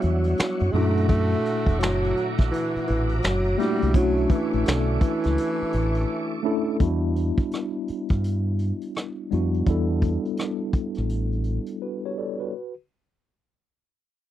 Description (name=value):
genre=R&B, neo-soul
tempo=84 BPM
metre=4/4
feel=swing 63% on 16ths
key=E dorian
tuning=A4 = 440 Hz
part: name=breathy tenor saxophone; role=melody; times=0.0-6.4 s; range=D3 to A3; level=-26 LUFS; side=equal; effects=none
part: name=mellow tine electric piano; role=accompaniment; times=0.0-12.7 s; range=A#2 to D5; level=-27 LUFS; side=left 1 dB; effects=medium stereo tremolo
part: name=tonewheel organ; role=sustained chords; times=0.0-6.8 s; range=A4 to D6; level=-36 LUFS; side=equal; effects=chorus vibrato, slow rotary speaker
part: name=clear saxophone section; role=stabs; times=0.0-6.4 s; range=B2 to F#4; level=-35 LUFS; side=right 11 dB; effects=none
part: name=deep dub fingered electric bass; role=bass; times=0.0-11.6 s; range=E1 to G2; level=-24 LUFS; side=equal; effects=none
part: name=vintage brush drum kit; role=drums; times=0.0-11.8 s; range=finger snaps, hi-hat, kick drum, rim click, snare drum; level=-22 LUFS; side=equal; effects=none
room=little or no reverb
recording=dry, close 1970s-style studio recording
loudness=-22 LUFS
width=side -12 dB against mid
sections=0.0-6.8 A section; 6.8-12.5 B section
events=silent gap 6.1-6.8; break 11.8-12.5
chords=0.0 Em9; 0.7 F#7alt; 3.9 Bm11; 6.8 Em9